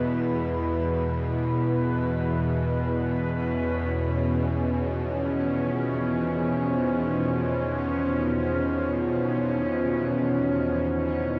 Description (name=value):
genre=dark ambient drone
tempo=free time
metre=none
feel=none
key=unclear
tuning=A4 = 440 Hz
part: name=deep dark ambient pad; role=sustained chords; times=0.0-11.4 s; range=C#4 to C5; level=-32 LUFS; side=equal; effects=chorus, built-in reverb, shimmer reverb
part: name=bowed-like drone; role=drone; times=0.0-11.4 s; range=E2 to B2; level=-28 LUFS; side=equal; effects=built-in reverb
part: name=bubbling stepped-filter texture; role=texture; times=0.0-11.4 s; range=C#4 to B4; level=-35 LUFS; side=equal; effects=chorus, built-in reverb, shimmer reverb
room=wet cathedral reverb, RT60 6.2 s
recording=worn, warbling old tape, cassette tape, warbly pitch drift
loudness=-26 LUFS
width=mono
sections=0.0-11.4 A section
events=none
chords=0.0 E; 3.2 C#add9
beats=free time